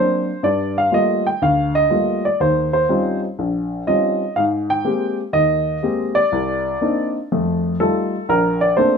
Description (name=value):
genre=jazz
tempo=122 BPM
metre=4/4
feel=swing 67% on 8ths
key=unclear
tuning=A4 = 440 Hz
part: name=dark baby grand piano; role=solo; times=0.0-9.0 s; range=Bb1 to G5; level=-16 LUFS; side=equal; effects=none
room=moderate studio reverb, RT60 0.8 s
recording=minimal, uncompressed stereo recording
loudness=-16 LUFS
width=side -6 dB against mid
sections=0.0-9.0 A section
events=none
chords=0.4 Gm9; 2.4 Eb13; 4.4 Abmaj9; 6.3 Cm9; 7.3 F9; 8.3 Bbmaj9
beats=| 0.43 0.92 1.41 1.90 | 2.39 2.88 3.37 3.86 | 4.35 4.84 5.33 5.83 | 6.32 6.81 7.30 7.79 | 8.28 8.77